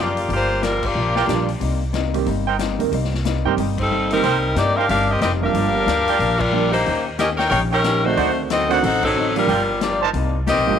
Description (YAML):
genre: jazz, big band swing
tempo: 183 BPM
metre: 4/4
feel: swing 62% on 8ths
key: G minor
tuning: A4 = 440 Hz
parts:
  - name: edgy saxophone section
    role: melody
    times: 0.0-1.5, 3.8-10.8 s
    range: F#3 to G5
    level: -19 LUFS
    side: left 1 dB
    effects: tape echo
  - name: vintage hollow-body jazz guitar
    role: accompaniment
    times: 0.0-10.7 s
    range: G2 to G4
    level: -27 LUFS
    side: left 12 dB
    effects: none
  - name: upright bass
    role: bass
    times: 0.0-10.8 s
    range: F1 to G2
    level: -24 LUFS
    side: equal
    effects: transformer saturation
  - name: swinging big-band drum kit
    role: drums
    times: 0.2-10.6 s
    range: crash cymbal, hi-hat, kick drum, snare drum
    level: -30 LUFS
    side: left 6 dB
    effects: none
  - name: warm trumpet section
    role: stabs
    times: 1.2-10.1 s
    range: Eb4 to A5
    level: -24 LUFS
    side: right 9 dB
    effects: none
  - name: clear baby grand piano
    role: accompaniment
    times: 1.3-10.8 s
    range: Eb3 to D5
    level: -24 LUFS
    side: right 13 dB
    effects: none
room: moderate spring reverb, RT60 1.4 s, studio ambience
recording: 1960s-style stereo with parts hard left and right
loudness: -17 LUFS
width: side -8 dB against mid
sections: 0.0-10.8 A section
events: band accent 0.8, 3.7, 6.4, 9.0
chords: 0.0 Gm7; 1.6 Cm7; 5.5 Gm7; 6.9 Eb7; 8.2 D7b9; 9.5 Gm7; 10.1 Cm7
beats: | 0.30 0.62 0.95 1.28 | 1.61 1.94 2.27 2.59 | 2.92 3.25 3.58 3.91 | 4.24 4.57 4.89 5.22 | 5.55 5.88 6.21 6.54 | 6.86 7.19 7.52 7.85 | 8.18 8.51 8.83 9.16 | 9.49 9.82 10.15 10.47